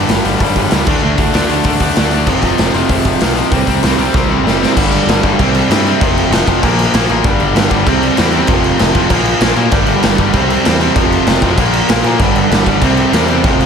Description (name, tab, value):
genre	punk rock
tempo	193 BPM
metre	4/4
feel	straight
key	unclear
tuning	A4 = 441 Hz
part	distorted electric guitar	riff	0.0-13.7 s	F2 to D4	-15 LUFS	left 13 dB	overdrive
part	overdriven electric guitar	riff	0.0-13.7 s	F2 to D4	-17 LUFS	right 14 dB	none
part	growling picked electric bass	bass	0.0-13.7 s	F1 to Bb2	-18 LUFS	equal	overdrive
part	raw garage drum kit	drums	0.1-13.7 s	crash cymbal, hi-hat, kick drum, snare drum	-14 LUFS	right 1 dB	none
room	light reverb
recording	none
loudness	-10 LUFS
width	side -6 dB against mid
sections	0.0-4.8 A section; 4.8-13.7 B section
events	drum fill 4.1-4.8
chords	0.0 G5; 0.9 D5; 2.3 F5; 3.5 C5; 4.8 G5; 5.4 C5; 6.0 F5; 6.6 Bb5; 7.2 G5; 7.9 C; 8.5 F5; 9.1 Bb5; 9.7 G5; 10.4 C; 11.0 F5; 11.6 Bb5; 12.2 G5; 12.8 C